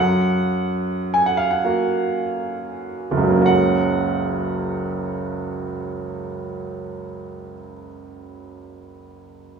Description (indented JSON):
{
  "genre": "classical, romantic nocturne for solo piano",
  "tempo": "31-37 BPM (dotted quarters)",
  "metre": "12/8",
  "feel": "rubato",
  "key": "F# major",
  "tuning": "A4 = 438 Hz",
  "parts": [
    { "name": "warm baby grand piano", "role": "solo", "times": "0.0-9.6 s", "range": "F#1 to G#5", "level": "-20 LUFS", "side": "right 2 dB", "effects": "none" }
  ],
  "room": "wet recital hall reverb, RT60 1.5 s",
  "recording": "small room ambience",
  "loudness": "-19 LUFS",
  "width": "side -6 dB against mid",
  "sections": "0.0-3.5 A section; 3.5-9.6 B section",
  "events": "slowing down 0.0-3.5",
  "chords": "0.0 F#",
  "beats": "1.64 | 3.49 5.33 7.26 9.14"
}